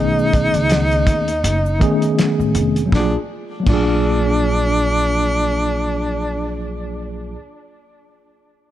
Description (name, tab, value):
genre	hip hop, jazz-hop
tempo	81 BPM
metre	4/4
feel	swing 57% on 16ths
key	unclear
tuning	A4 = 440 Hz
part	breathy tenor saxophone	melody	0.0-6.7 s	D4 to Eb4	-21 LUFS	equal	tape echo
part	mellow tine electric piano	accompaniment	0.0-7.4 s	D#3 to G#4	-20 LUFS	equal	medium stereo tremolo
part	upright bass	bass	0.0-7.3 s	F1 to D#2	-22 LUFS	equal	none
part	congas and egg shaker	percussion	0.2-3.9 s	none	-36 LUFS	right 11 dB	none
part	cloth-damped thuddy drum kit	drums	0.3-3.9 s	crash cymbal, hi-hat, kick drum, snare drum	-20 LUFS	equal	none
room	light reverb, small room ambience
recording	none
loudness	-15 LUFS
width	side -12 dB against mid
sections	0.0-2.9 A section; 2.9-5.9 B section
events	none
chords	0.0 B13; 2.9 Bb7b13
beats	0.70 1.44 2.18 | 2.92 3.67 4.41 5.15